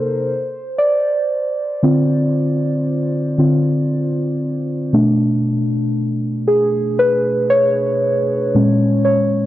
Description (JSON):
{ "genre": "R&B", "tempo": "58 BPM", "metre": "4/4", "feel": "straight", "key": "unclear", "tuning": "A4 = 440 Hz", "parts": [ { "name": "muted felt-like synth keys", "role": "solo", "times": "0.0-9.5 s", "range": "A#2 to D5", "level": "-15 LUFS", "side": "equal", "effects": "chorus" } ], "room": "light reverb, digital ambience", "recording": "dry, gritty hardware recording", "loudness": "-15 LUFS", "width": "side -14 dB against mid", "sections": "0.0-9.5 A section", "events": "synth keys solo 0.0-9.5", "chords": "0.3 Dm7; 4.9 Bm9; 8.6 A#m7" }